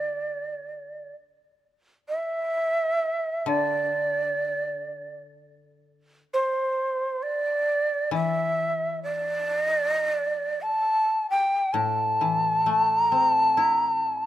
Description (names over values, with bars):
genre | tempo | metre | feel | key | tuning
japanese traditional, Japanese chamber music | free time | none | none | D suspended pentatonic | A4 = 440 Hz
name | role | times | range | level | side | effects
breathy shakuhachi | melody | 0.0-14.3 s | C5 to A5 | -23 LUFS | right 1 dB | none
koto | accompaniment | 0.0-14.3 s | A2 to E4 | -30 LUFS | left 8 dB | none
room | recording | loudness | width
light reverb | close, detailed microphones | -22 LUFS | side -13 dB against mid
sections
0.0-5.4 A section; 5.4-14.3 A section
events
none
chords
none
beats
free time